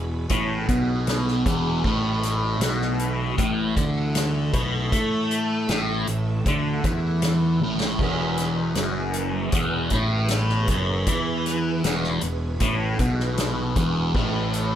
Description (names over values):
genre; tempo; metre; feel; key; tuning
psychedelic rock; 78 BPM; 4/4; straight; E mixolydian; A4 = 440 Hz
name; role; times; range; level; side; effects
string machine, violins; sustained chords; 0.0-14.8 s; E3 to E5; -35 LUFS; right 4 dB; ensemble chorus
fuzz guitar; riff; 0.0-14.8 s; E2 to A3; -23 LUFS; equal; distortion, phaser
fuzz fingered electric bass; bass; 0.0-14.8 s; E1 to A2; -29 LUFS; equal; overdrive
soft-mallet drum kit; drums; 0.3-14.7 s; crash cymbal, hi-hat, kick drum, snare drum, toms; -27 LUFS; equal; none
room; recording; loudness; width
light reverb, studio ambience; none; -21 LUFS; side -10 dB against mid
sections
0.0-14.8 A section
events
drum fill 7.6-8.0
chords
0.0 E; 1.8 A5; 8.0 E; 14.1 A5